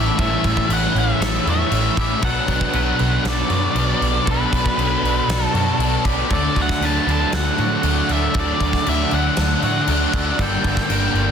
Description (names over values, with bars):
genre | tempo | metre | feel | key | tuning
rock, shoegaze and dream pop | 118 BPM | 4/4 | straight | D major | A4 = 440 Hz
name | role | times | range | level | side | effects
octave-fuzz lead guitar | melody | 0.0-11.3 s | B4 to A5 | -23 LUFS | equal | distortion, slapback echo
granular cloud pad | sustained chords | 0.0-11.3 s | G3 to D6 | -31 LUFS | right 1 dB | built-in reverb
twangy electric guitar | arpeggios | 0.0-11.3 s | F#4 to B4 | -31 LUFS | right 2 dB | wide subtle chorus, slapback echo
biting overdriven guitar | riff | 0.0-11.3 s | G2 to E4 | -26 LUFS | right 10 dB | reverse reverb
distorted electric guitar | riff | 0.0-11.3 s | G2 to E4 | -27 LUFS | equal | distortion
thick fuzz guitar | riff | 0.0-11.3 s | G2 to D4 | -26 LUFS | left 10 dB | distortion, ensemble chorus
vintage muted picked electric bass | bass | 0.0-11.3 s | G1 to A2 | -22 LUFS | equal | none
big rock drum kit | drums | 0.2-11.3 s | crash cymbal, kick drum, snare drum | -23 LUFS | left 1 dB | none
room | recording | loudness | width
light reverb | dense, heavily limited modern master | -16 LUFS | side -7 dB against mid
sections
0.0-11.3 A section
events
none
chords
0.0 A7; 2.2 Bm7; 6.3 D; 10.4 Gmadd9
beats
| 0.18 0.69 1.21 1.72 | 2.23 2.74 3.25 3.76 | 4.27 4.78 5.29 5.80 | 6.31 6.82 7.33 7.84 | 8.35 8.86 9.37 9.88 | 10.39 10.90